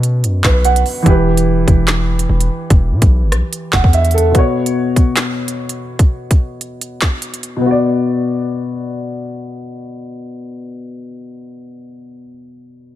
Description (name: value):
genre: hip hop, drill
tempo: 146 BPM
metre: 4/4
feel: half-time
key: B minor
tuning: A4 = 441 Hz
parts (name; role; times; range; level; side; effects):
- dark grand piano; accompaniment; 0.0-13.0 s; B2 to F#5; -18 LUFS; equal; low-pass filter
- hard-hitting 808-style bass; bass; 0.0-4.3 s; E1 to B2; -14 LUFS; equal; none
- drill drum kit; drums; 0.0-7.5 s; handclaps, hi-hat, kick drum, rim click, snare drum; -14 LUFS; equal; none
room: little or no reverb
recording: none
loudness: -12 LUFS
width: side -13 dB against mid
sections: 0.0-4.3 A section; 4.3-7.6 B section; 7.6-10.9 C section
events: filter sweep on grand piano 4.3-7.6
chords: 0.0 Bsus2; 1.1 Em; 4.3 Bsus2; 7.6 Bm